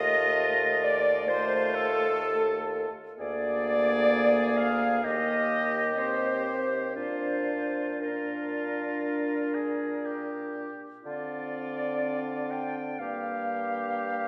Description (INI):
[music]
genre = classical, slow romantic movement for wind quintet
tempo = 57-67 BPM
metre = 4/4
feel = rubato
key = unclear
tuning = A4 = 441 Hz
[part]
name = silver concert flute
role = melody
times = 0.0-14.3 s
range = A4 to G5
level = -33 LUFS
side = equal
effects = none
[part]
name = warm oboe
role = second line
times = 0.0-14.3 s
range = F4 to Ab4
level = -36 LUFS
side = equal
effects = none
[part]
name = warm French horn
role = accompaniment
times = 0.0-14.3 s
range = A3 to D4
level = -36 LUFS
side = equal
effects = none
[part]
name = warm clarinet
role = accompaniment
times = 0.0-14.3 s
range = A4 to G5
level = -34 LUFS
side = equal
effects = none
[part]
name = warm bassoon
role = bass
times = 0.0-14.3 s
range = D2 to D3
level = -36 LUFS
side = equal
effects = none
[sound]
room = wet concert hall reverb, RT60 2.1 s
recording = none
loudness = -28 LUFS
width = mono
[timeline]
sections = 0.0-14.3 A section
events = none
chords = 0.0 F7/Eb; 3.2 Bb7/D; 5.0 Eb; 7.0 Bb; 11.1 Dm7; 13.0 Gm